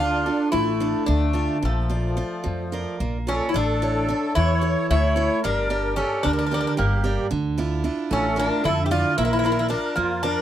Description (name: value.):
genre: greek folk, Greek bouzouki band.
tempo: 222 BPM (eighths).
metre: 7/8.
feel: straight.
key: A phrygian dominant.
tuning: A4 = 441 Hz.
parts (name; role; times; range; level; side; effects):
Greek bouzouki; melody; 0.0-10.4 s; A3 to G4; -24 LUFS; left 2 dB; none.
musette accordion; second line; 0.0-10.4 s; F3 to E5; -28 LUFS; equal; none.
picked acoustic archtop guitar; accompaniment; 0.0-10.4 s; Bb2 to D5; -26 LUFS; right 4 dB; none.
upright bass; bass; 0.0-10.3 s; G1 to F2; -25 LUFS; equal; none.
room: light reverb.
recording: dry, close 1970s-style studio recording.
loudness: -20 LUFS.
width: side -11 dB against mid.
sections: 0.0-3.5 A section; 3.5-10.4 B section.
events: speeding up 0.0-10.4.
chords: 0.0 Dm; 1.6 Bb; 3.5 A; 5.4 Gm; 7.3 Dmadd9; 9.2 Bb.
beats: 0.26 0.53 0.81 1.08 1.36 | 1.63 1.91 2.18 2.46 2.73 3.00 3.27 | 3.55 3.82 4.09 4.36 4.63 4.90 5.17 | 5.44 5.71 5.98 6.25 6.52 6.79 7.05 | 7.32 7.59 7.85 8.12 8.38 8.65 8.91 | 9.18 9.44 9.71 9.97 10.23.